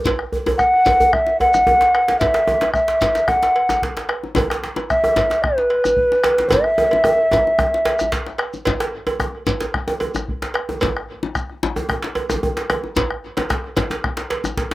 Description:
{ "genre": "west african traditional, West African drum ensemble", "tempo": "112 BPM", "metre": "4/4", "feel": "straight", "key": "unclear", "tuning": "A4 = 436 Hz", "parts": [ { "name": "shekere", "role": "percussion", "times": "0.0-14.6 s", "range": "none", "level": "-28 LUFS", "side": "equal", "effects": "none" }, { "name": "bombo", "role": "percussion", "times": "0.1-14.7 s", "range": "none", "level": "-25 LUFS", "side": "left 1 dB", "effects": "none" }, { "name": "cowbell", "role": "percussion", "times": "0.1-14.4 s", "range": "none", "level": "-26 LUFS", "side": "right 4 dB", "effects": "slapback echo" }, { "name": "djembe", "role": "percussion", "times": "0.1-14.7 s", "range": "none", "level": "-26 LUFS", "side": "left 4 dB", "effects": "none" }, { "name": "djembe", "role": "percussion", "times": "0.3-14.7 s", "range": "none", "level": "-24 LUFS", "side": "right 1 dB", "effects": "none" }, { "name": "mellow hollow tenor recorder", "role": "melody", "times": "0.6-8.1 s", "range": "B4 to F#5", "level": "-15 LUFS", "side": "equal", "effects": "slapback echo" } ], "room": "little or no reverb", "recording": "recorded outdoors, with no room sound", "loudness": "-16 LUFS", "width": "side -18 dB against mid", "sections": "0.0-8.7 A section; 8.7-14.7 B section", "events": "drum fill 6.5-8.7", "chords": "none", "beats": "| 0.05 0.59 1.13 1.67 | 2.21 2.74 3.28 3.82 | 4.36 4.90 5.43 5.97 | 6.51 7.05 7.58 8.12 | 8.66 9.20 9.73 10.27 | 10.81 11.35 11.88 12.42 | 12.96 13.50 14.03 14.57" }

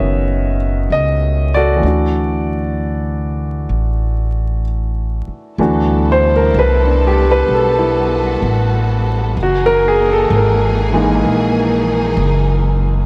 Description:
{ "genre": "jazz ballad", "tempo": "64 BPM", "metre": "4/4", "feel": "swing 66% on 8ths", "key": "unclear", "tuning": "A4 = 440 Hz", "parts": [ { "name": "warm concert grand piano", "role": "accompaniment", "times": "0.0-13.1 s", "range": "C#3 to E5", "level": "-18 LUFS", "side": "equal", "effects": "none" }, { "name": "upright bass", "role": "bass", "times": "0.0-13.1 s", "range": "F#1 to D2", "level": "-19 LUFS", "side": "equal", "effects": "none" }, { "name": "warm studio string section", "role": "sustained chords", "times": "5.6-13.1 s", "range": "E3 to A4", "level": "-24 LUFS", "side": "equal", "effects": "none" } ], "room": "light reverb, studio reverb", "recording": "dry, gritty hardware recording, vinyl crackle", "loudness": "-15 LUFS", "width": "mono", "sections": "0.0-5.6 A section; 5.6-13.1 B section", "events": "none", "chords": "0.0 Bmaj9; 1.8 Dadd9; 5.6 G69; 9.4 F#13", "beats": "0.90 | 1.83 2.76 3.69 4.64 | 5.59 6.54 7.48 8.42 | 9.36 10.29 11.22 12.15" }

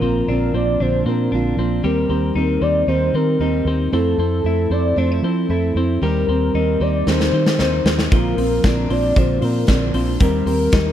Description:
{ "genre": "jangly indie pop", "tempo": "115 BPM", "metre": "4/4", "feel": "straight", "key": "unclear", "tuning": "A4 = 440 Hz", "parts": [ { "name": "warm velvety synth lead", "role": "melody", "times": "0.0-10.9 s", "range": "A4 to D5", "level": "-22 LUFS", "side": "left 2 dB", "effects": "chorus" }, { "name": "fingerpicked plugged-in steel-string acoustic guitar", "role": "accompaniment", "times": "0.0-10.9 s", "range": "Bb2 to Bb4", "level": "-22 LUFS", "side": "right 7 dB", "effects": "none" }, { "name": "twelve-string electric guitar", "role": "arpeggios", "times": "0.0-10.9 s", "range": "F3 to F4", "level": "-24 LUFS", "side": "left 8 dB", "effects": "warbly pitch drift" }, { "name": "vintage muted fingered electric bass", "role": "bass", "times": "0.0-10.9 s", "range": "Bb1 to F3", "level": "-21 LUFS", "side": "equal", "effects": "none" }, { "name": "big rock drum kit", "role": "drums", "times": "7.1-10.8 s", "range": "hi-hat, kick drum, snare drum", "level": "-19 LUFS", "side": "equal", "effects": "none" } ], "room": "little or no reverb", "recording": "none", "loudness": "-16 LUFS", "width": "side -10 dB against mid", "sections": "0.0-10.9 A section", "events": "drum fill 7.1-8.1", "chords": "0.0 Bbadd9; 1.9 Eb6; 3.9 Fmaj7; 6.0 Eb6; 8.1 Bbadd9; 10.2 Eb6", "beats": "0.29 0.81 1.33 | 1.85 2.37 2.89 3.42 | 3.94 4.46 4.98 5.50 | 6.03 6.55 7.07 7.59 | 8.12 8.64 9.16 9.68 | 10.21 10.73" }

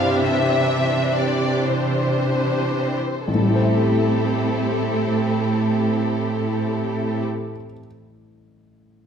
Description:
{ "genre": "cinematic, emotional film score for orchestra", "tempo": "36-43 BPM (dotted quarters)", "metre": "6/8", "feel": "rubato", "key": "A minor", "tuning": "A4 = 439 Hz", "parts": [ { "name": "warm studio violin section", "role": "melody", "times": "0.0-7.2 s", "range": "A4 to F5", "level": "-26 LUFS", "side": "left 3 dB", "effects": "none" }, { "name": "warm symphonic violin section", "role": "second line", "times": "0.0-7.2 s", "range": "E4 to C5", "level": "-27 LUFS", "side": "left 3 dB", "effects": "none" }, { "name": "rich symphonic viola section", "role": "accompaniment", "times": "0.0-7.3 s", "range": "E3 to D4", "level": "-25 LUFS", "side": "equal", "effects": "none" }, { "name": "warm baby grand piano", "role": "accompaniment", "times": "0.0-9.1 s", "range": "A1 to E5", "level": "-25 LUFS", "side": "left 2 dB", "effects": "none" }, { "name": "concert harp", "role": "arpeggios", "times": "0.0-7.8 s", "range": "A2 to E5", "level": "-34 LUFS", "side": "left 8 dB", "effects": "none" }, { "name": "rich symphonic cello section", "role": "bass", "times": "0.0-7.2 s", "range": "A2 to C3", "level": "-23 LUFS", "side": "right 4 dB", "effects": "none" } ], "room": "wet scoring stage reverb, RT60 1.4 s", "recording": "none", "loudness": "-18 LUFS", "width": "side -7 dB against mid", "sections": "0.0-3.3 A section; 3.3-6.5 B section", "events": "slowing down 0.0-3.3", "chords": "0.0 Cadd9; 3.3 Am7", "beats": "| 0.21 1.66 | 3.28 4.89" }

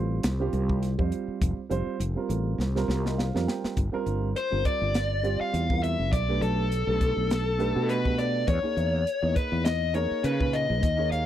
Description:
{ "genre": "electric jazz fusion", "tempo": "102 BPM", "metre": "4/4", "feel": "swing 55% on 16ths", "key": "unclear", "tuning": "A4 = 441 Hz", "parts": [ { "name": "dark baby grand piano", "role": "accompaniment", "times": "0.0-11.3 s", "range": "Bb2 to G5", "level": "-32 LUFS", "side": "right 5 dB", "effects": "none" }, { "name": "fretless electric bass", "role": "bass", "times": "0.0-11.3 s", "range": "F1 to C#3", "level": "-27 LUFS", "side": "equal", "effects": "wide subtle chorus" }, { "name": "crisp fusion drum kit", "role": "drums", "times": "0.2-11.3 s", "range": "hi-hat, kick drum, snare drum", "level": "-29 LUFS", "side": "equal", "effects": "none" }, { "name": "dark smooth lead guitar", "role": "melody", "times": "4.4-11.3 s", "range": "A4 to F5", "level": "-29 LUFS", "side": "left 5 dB", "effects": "overdrive" }, { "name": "raw garage guitar", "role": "second line", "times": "4.4-11.3 s", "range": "A4 to F5", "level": "-34 LUFS", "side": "right 3 dB", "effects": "overdrive" } ], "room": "little or no reverb", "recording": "dry, close 1970s-style studio recording", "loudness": "-24 LUFS", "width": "side -11 dB against mid", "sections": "0.0-3.8 A section; 3.8-11.3 B section", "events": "drum fill 2.6-3.8; grand piano fill 2.6-3.8", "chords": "0.0 Fsus24; 3.8 Gm7; 6.1 Gadd9/B; 8.5 E6", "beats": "0.24 0.83 | 1.41 2.00 2.59 3.18 | 3.77 4.36 4.94 5.53 | 6.12 6.71 7.30 7.89 | 8.47 9.06 9.65 10.24 | 10.83" }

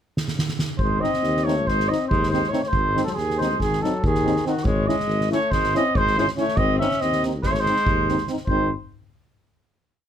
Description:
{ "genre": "balkan folk, Balkan brass band", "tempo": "281 BPM (eighths)", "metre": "9/8", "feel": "straight", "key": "G# phrygian dominant", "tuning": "A4 = 440 Hz", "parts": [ { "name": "soft-mallet drum kit", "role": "percussion", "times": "0.2-8.7 s", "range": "kick drum, snare drum", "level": "-27 LUFS", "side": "equal", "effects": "none" }, { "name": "mellow trumpet", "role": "melody", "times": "0.8-8.7 s", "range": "F#4 to E5", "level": "-23 LUFS", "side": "right 2 dB", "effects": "none" }, { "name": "warm alto saxophone", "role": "second line", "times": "0.8-8.7 s", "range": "D#3 to C#4", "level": "-28 LUFS", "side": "left 4 dB", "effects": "none" }, { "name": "mellow tuba", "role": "bass", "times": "0.8-8.7 s", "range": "G#1 to D#2", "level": "-26 LUFS", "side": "equal", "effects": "none" }, { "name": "clear French horn", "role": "accompaniment", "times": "1.0-8.7 s", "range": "D#4 to E4", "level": "-28 LUFS", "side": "left 6 dB", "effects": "none" }, { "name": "warm trombone", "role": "accompaniment", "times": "1.0-8.7 s", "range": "B#3 to C#4", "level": "-29 LUFS", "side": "right 7 dB", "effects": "none" } ], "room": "light reverb", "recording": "close, detailed microphones", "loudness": "-19 LUFS", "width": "side -9 dB against mid", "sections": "0.0-0.8 pickup bar; 0.8-8.5 A section; 8.5-10.1 final chord", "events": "drum fill 0.2-0.8", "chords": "0.0 N.C.; 0.8 G#; 4.7 C#m/G#; 6.6 G#", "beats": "0.16 0.37 0.59 | 0.80 1.01 1.23 1.44 1.66 1.87 2.09 2.30 2.52 | 2.73 2.94 3.16 3.37 3.58 3.80 4.01 4.22 4.44 | 4.65 4.86 5.08 5.29 5.50 5.72 5.93 6.14 6.35 | 6.57 6.78 6.99 7.21 7.42 7.63 7.84 8.06 8.27 | 8.48 8.70" }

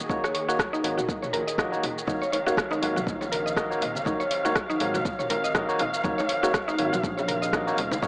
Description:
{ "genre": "afro house", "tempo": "121 BPM", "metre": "4/4", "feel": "swing 57% on 16ths", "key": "Eb dorian", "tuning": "A4 = 440 Hz", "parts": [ { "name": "muted studio string section", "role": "sustained chords", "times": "0.0-8.1 s", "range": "C3 to F5", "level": "-31 LUFS", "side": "equal", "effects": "sidechain pumping" }, { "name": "deep house drum kit", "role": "drums", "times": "0.0-8.1 s", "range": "hi-hat, rim click, shaker, toms", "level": "-30 LUFS", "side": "equal", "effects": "overdrive, dub echo" }, { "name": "mallet-like synth pluck", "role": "arpeggios", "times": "0.1-8.1 s", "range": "Eb4 to Eb5", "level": "-29 LUFS", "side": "equal", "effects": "chorus, sidechain pumping, dub echo" }, { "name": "barky tine electric piano", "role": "stabs", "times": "0.1-8.1 s", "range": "Bb3 to Eb5", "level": "-29 LUFS", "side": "equal", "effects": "vintage 12-bit sampler grit, sidechain pumping, dub echo" }, { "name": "smooth synth bass", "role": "bass", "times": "0.1-8.1 s", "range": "Eb1 to Bb1", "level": "-35 LUFS", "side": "equal", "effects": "sidechain pumping" }, { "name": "electronic kick drum", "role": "drums", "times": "0.1-8.1 s", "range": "none", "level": "-32 LUFS", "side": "equal", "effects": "overdrive" }, { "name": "congas", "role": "percussion", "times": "2.1-8.1 s", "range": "none", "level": "-40 LUFS", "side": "equal", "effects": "none" }, { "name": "bongos", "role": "percussion", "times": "2.3-8.0 s", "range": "none", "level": "-36 LUFS", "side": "equal", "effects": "none" } ], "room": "moderate spring reverb, RT60 1.6 s", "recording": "echo-heavy mix, small speaker sound", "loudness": "-23 LUFS", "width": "side -29 dB against mid", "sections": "0.0-8.1 A section", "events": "none", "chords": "0.0 Ebm7", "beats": "| 0.10 0.59 1.09 1.58 | 2.08 2.57 3.07 3.57 | 4.06 4.56 5.05 5.55 | 6.04 6.54 7.04 7.53 | 8.03" }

